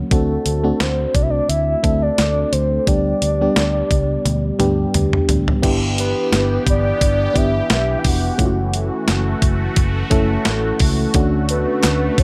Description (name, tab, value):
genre	1980s-style pop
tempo	87 BPM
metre	4/4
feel	swing 55% on 16ths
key	unclear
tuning	A4 = 439 Hz
part	FM electric piano with tremolo	accompaniment	0.0-12.2 s	F#3 to A4	-24 LUFS	equal	none
part	vintage muted fingered electric bass	bass	0.0-12.2 s	F1 to D2	-23 LUFS	equal	none
part	soft octave-layered synth lead	melody	0.1-12.2 s	A4 to G5	-24 LUFS	equal	chorus, tremolo, tape echo
part	clean 12-bit digital drum machine	drums	0.1-12.2 s	crash cymbal, hi-hat, kick drum, snare drum, toms	-21 LUFS	equal	none
part	sweeping resonant pad	sustained chords	6.1-12.2 s	D3 to G4	-29 LUFS	equal	chorus
part	group handclap	percussion	11.8-12.0 s	none	-30 LUFS	equal	none
room	digital ambience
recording	none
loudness	-18 LUFS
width	mono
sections	0.0-5.6 A section; 5.6-12.2 B section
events	drum fill 4.3-5.6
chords	0.1 D7; 2.9 G; 5.6 G6; 8.4 F#m7; 11.1 Dmaj7